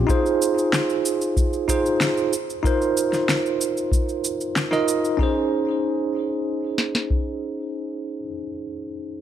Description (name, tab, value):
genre	sunset chillout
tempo	94 BPM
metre	4/4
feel	straight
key	unclear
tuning	A4 = 443 Hz
part	bell-like tine electric piano	accompaniment	0.0-9.2 s	C4 to Eb5	-22 LUFS	right 2 dB	auto-pan, digital delay
part	electronic cabasa and snare drum	drums	0.1-5.2 s	none	-25 LUFS	equal	overdrive
part	soft vintage rhythm box	drums	0.1-7.3 s	kick drum, snare drum	-22 LUFS	left 1 dB	none
room	light reverb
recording	none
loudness	-20 LUFS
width	side -10 dB against mid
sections	0.0-5.2 A section; 5.2-7.7 B section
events	none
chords	0.1 Ab6/Eb; 2.3 Bbsus24/Eb; 5.2 Abadd11/Db